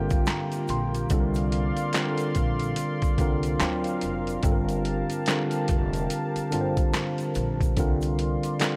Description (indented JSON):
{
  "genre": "lo-fi hip hop",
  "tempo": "72 BPM",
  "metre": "4/4",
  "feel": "swing 61% on 16ths",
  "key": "G minor",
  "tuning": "A4 = 441 Hz",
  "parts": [
    { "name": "mellow tine electric piano", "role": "accompaniment", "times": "0.0-8.8 s", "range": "D3 to C6", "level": "-29 LUFS", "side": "equal", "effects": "overdrive, cassette tape" },
    { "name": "warm analog pad", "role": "sustained chords", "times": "0.0-8.8 s", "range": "Bb3 to C6", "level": "-36 LUFS", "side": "equal", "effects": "chorus" },
    { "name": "upright bass", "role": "bass", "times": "0.0-8.3 s", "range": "E#1 to D2", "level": "-33 LUFS", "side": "equal", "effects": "none" },
    { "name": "boom bap sampler-style drum kit", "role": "drums", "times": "0.1-8.8 s", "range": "handclaps, hi-hat, kick drum, snare drum", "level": "-29 LUFS", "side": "equal", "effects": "none" },
    { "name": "egg shaker", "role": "percussion", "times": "0.1-8.8 s", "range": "none", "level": "-50 LUFS", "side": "equal", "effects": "none" }
  ],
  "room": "light reverb",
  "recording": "none",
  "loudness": "-26 LUFS",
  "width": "mono",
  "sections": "0.0-8.8 A section",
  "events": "none",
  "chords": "0.0 Gm9; 1.1 C9sus4; 3.6 D7alt; 4.4 Gm9; 7.8 C9sus4",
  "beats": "0.27 | 1.10 1.94 2.77 3.60 | 4.44 5.27 6.10 6.94 | 7.77 8.60"
}